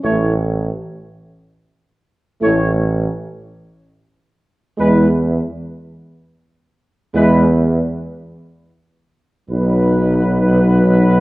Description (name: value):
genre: classical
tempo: free time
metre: none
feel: none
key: unclear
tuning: A4 = 440 Hz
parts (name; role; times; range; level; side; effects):
- mellow trumpet section; melody; 0.0-11.2 s; B4 to C#5; -21 LUFS; equal; none
- mellow French horn section; sustained chords; 0.0-11.2 s; D#4 to E4; -22 LUFS; left 3 dB; none
- mellow trombone section; sustained chords; 0.0-11.2 s; F#3 to A3; -18 LUFS; equal; none
- clear tuba; bass; 0.0-11.2 s; A1 to E2; -17 LUFS; right 1 dB; none
room: wet recital hall reverb, RT60 1.4 s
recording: worn, warbling old tape, cassette tape, warbly pitch drift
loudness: -13 LUFS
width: side -19 dB against mid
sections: 0.0-11.2 A section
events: none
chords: 0.0 A5; 4.8 E; 9.5 B